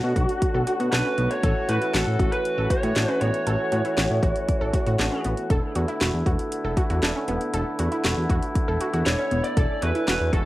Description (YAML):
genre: synth-pop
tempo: 118 BPM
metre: 4/4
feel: straight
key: unclear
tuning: A4 = 440 Hz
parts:
  - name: lead guitar through a small cranked amp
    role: melody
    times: 0.0-5.2, 9.1-10.5 s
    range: F#4 to D5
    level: -27 LUFS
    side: right 1 dB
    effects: overdrive, cassette tape, analog delay, plate reverb
  - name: mellow brass ensemble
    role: sustained chords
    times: 0.0-10.5 s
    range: D3 to F#4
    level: -29 LUFS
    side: left 1 dB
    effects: cassette tape, plate reverb
  - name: wide unison pluck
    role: arpeggios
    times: 0.0-10.5 s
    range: B3 to A4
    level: -31 LUFS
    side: right 1 dB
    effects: cassette tape, analog delay, plate reverb
  - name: smooth synth bass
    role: bass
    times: 0.0-10.4 s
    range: E1 to B2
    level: -25 LUFS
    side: equal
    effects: none
  - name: house drum kit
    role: drums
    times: 0.2-10.4 s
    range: hi-hat, kick drum, snare drum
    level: -25 LUFS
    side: equal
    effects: cassette tape
room: moderate studio reverb, RT60 0.6 s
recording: home recording on cassette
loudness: -21 LUFS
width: side -16 dB against mid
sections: 0.0-10.5 A section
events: none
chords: 0.0 Bm7; 1.4 F#m7/A; 5.5 E7sus4